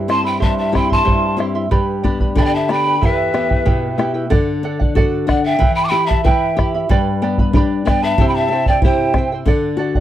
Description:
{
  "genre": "andean folk, Andean ensemble",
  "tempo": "93 BPM",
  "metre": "2/4",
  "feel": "straight",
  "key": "unclear",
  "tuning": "A4 = 441 Hz",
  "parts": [
    { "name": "charango", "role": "accompaniment", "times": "0.0-10.0 s", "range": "E4 to C6", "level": "-22 LUFS", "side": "right 6 dB", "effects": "none" },
    { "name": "nylon-string guitar", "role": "accompaniment", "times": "0.0-10.0 s", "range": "E2 to B4", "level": "-20 LUFS", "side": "left 5 dB", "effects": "none" },
    { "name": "breathy mellow quena", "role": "melody", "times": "0.1-9.3 s", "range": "E5 to D6", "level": "-19 LUFS", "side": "right 1 dB", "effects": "slapback echo" },
    { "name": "breathy mellow pan flute", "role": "second line", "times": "0.1-9.3 s", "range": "B4 to A5", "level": "-22 LUFS", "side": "left 1 dB", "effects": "none" },
    { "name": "bombo", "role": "percussion", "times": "0.1-10.0 s", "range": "none", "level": "-17 LUFS", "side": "equal", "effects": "none" }
  ],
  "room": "little or no reverb",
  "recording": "dry, close 1970s-style studio recording",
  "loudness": "-14 LUFS",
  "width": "side -12 dB against mid",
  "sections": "0.0-4.3 A section; 4.3-10.0 B section",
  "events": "none",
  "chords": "0.0 C; 1.7 G; 3.0 Em; 4.3 D; 5.6 Em; 6.9 G; 8.2 C; 9.5 D"
}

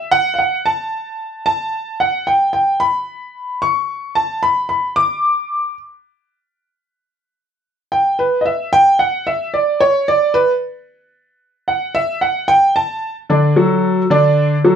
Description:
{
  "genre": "latin",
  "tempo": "112 BPM",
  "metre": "4/4",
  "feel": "straight",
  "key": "D major",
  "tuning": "A4 = 441 Hz",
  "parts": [
    { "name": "clear baby grand piano", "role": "solo", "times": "0.0-14.8 s", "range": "D3 to D6", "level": "-14 LUFS", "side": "equal", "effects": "none" }
  ],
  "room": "moderate studio ambience, RT60 0.5 s",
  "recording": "heard from further back in the room",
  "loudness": "-14 LUFS",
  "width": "side -8 dB against mid",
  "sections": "0.0-13.3 A section; 13.3-14.8 B section",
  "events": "grand piano solo 0.0-13.3",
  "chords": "0.0 N.C.; 13.3 D"
}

